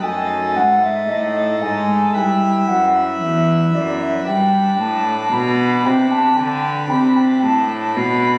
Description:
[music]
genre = classical, baroque-style sonata movement with continuo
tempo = 57 BPM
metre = 4/4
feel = straight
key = unclear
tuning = A4 = 439 Hz
[part]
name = mellow baroque flute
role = melody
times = 0.0-8.4 s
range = D5 to B5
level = -21 LUFS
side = equal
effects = none
[part]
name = pipe organ, principal chorus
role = accompaniment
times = 0.0-8.4 s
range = E2 to B4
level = -25 LUFS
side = equal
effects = none
[part]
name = rich cello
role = bass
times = 0.0-8.4 s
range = E2 to D3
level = -21 LUFS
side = equal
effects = none
[sound]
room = wet recital hall reverb, RT60 1.6 s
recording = recorded on a phone in the room, studio reverb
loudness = -17 LUFS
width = mono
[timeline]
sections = 0.0-8.4 A section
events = none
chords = 0.0 D#dim/F#; 2.1 Em; 4.3 G

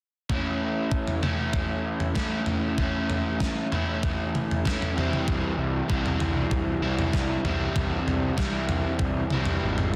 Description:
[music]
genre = indie rock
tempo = 97 BPM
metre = 4/4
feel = straight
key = unclear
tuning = A4 = 439 Hz
[part]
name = crunchy overdriven guitar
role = riff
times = 0.3-9.9 s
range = A2 to E4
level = -29 LUFS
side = equal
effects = none
[part]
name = gated 80s digital drum machine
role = drums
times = 0.3-10.0 s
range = kick drum, snare drum, toms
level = -30 LUFS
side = equal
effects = gated reverb, gated reverb snare, overdrive
[part]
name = fuzz picked electric bass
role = bass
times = 5.3-10.0 s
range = G#1 to C2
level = -32 LUFS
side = equal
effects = overdrive
[sound]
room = light reverb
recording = dense, heavily limited modern master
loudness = -26 LUFS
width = mono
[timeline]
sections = 0.3-10.0 A section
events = kick and snare drop out 9.6-10.0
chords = 0.3 A; 5.0 C

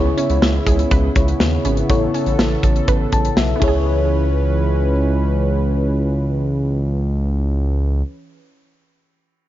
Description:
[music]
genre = synth-pop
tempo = 122 BPM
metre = 4/4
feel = straight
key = C# minor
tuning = A4 = 440 Hz
[part]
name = mellow FM electric piano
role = accompaniment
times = 0.0-8.0 s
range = E4 to A5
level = -23 LUFS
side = left 3 dB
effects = chorus
[part]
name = warm analog pad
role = sustained chords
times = 0.0-8.0 s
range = C#3 to B4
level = -24 LUFS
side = right 2 dB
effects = chorus
[part]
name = analog pluck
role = arpeggios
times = 0.0-8.1 s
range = B3 to B4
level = -27 LUFS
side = right 7 dB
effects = chorus, tape echo
[part]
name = smooth gliding synth bass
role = bass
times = 0.0-8.0 s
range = G#1 to D#2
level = -18 LUFS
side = equal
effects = none
[part]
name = modern studio drum kit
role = drums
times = 0.2-3.7 s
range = hi-hat, kick drum, ride cymbal, snare drum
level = -19 LUFS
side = equal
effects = none
[sound]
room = light reverb, small room ambience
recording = dark, warm production, nothing above 7.5 kHz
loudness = -15 LUFS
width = side -13 dB against mid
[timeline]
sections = 0.0-3.9 A section; 3.9-7.8 B section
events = FM electric piano fill 2.9-3.9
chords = 0.0 C#m7; 1.9 Aadd9; 3.6 C#m7

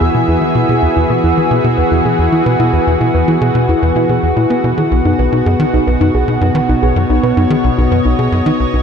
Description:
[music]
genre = ambient, sequencer-driven space music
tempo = 110 BPM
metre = 4/4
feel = straight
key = E major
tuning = A4 = 440 Hz
[part]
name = lush unison pad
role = sustained chords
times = 0.0-8.8 s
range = B2 to E5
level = -14 LUFS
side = equal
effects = chorus
[part]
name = soft round pluck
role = arpeggios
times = 0.0-8.8 s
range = D#4 to B4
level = -19 LUFS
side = equal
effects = chorus, auto-pan, ping-pong delay
[part]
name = tight sequencer bass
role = riff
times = 0.0-8.8 s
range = B1 to B3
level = -14 LUFS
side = equal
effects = ping-pong delay
[sound]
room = moderate plate reverb, RT60 2.7 s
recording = dark, warm production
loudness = -10 LUFS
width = side -7 dB against mid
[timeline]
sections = 0.0-8.8 A section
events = none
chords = 0.0 Eadd9; 4.9 Badd9

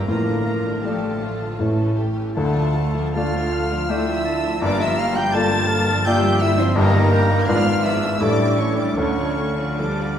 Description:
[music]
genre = classical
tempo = 74-85 BPM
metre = 3/4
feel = rubato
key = D minor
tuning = A4 = 440 Hz
[part]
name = clear baby grand piano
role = melody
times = 0.0-10.2 s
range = G1 to Eb5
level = -22 LUFS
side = left 1 dB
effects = none
[part]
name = warm studio violin section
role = melody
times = 0.0-10.2 s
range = A5 to A6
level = -30 LUFS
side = left 2 dB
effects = none
[part]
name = rich chamber violin section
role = second line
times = 0.0-10.2 s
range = C#4 to D5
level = -30 LUFS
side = left 3 dB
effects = none
[part]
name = small flute group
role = second line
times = 0.0-10.2 s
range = A4 to A5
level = -30 LUFS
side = right 1 dB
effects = none
[part]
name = warm clarinet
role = second line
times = 0.0-10.2 s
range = A4 to A5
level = -28 LUFS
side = equal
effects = none
[part]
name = warm symphonic viola section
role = accompaniment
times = 0.0-10.2 s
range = D3 to D4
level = -28 LUFS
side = right 1 dB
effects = none
[part]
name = mellow French horn section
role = sustained chords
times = 0.0-10.2 s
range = A3 to A4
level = -27 LUFS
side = left 1 dB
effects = none
[part]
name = rich symphonic cello section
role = bass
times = 0.0-10.2 s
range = D2 to D3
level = -29 LUFS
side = right 1 dB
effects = none
[part]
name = rich symphonic double bass section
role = bass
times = 0.0-10.2 s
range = G1 to D2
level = -27 LUFS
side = right 2 dB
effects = none
[part]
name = warm oboe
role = second line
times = 0.1-10.2 s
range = Eb5 to Bb5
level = -30 LUFS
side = right 1 dB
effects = none
[sound]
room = wet scoring stage reverb, RT60 1.7 s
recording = heard from further back in the room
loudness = -17 LUFS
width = side -9 dB against mid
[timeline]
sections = 0.0-10.2 A section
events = none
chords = 0.1 Dm/A; 1.6 A; 2.4 Dm; 4.6 Gm7; 6.8 Eb/G; 7.5 G#dim7; 8.2 A7; 9.0 Dm

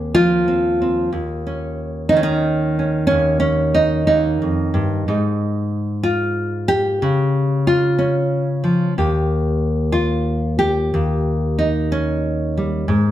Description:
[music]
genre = folk, solo fingerstyle acoustic guitar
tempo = 61 BPM (dotted quarters)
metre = 6/8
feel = straight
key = Eb mixolydian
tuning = A4 = 440 Hz
[part]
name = nylon-string guitar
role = solo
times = 0.0-13.1 s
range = Eb2 to Ab4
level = -16 LUFS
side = equal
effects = none
[sound]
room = wet studio reverb, RT60 0.7 s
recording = heard from further back in the room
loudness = -16 LUFS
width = side -12 dB against mid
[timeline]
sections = 0.0-5.1 A section; 5.1-13.1 B section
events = none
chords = 0.0 Fm/Eb; 1.1 Eb7(no3); 5.1 Ab5; 7.0 Db; 9.0 Eb7

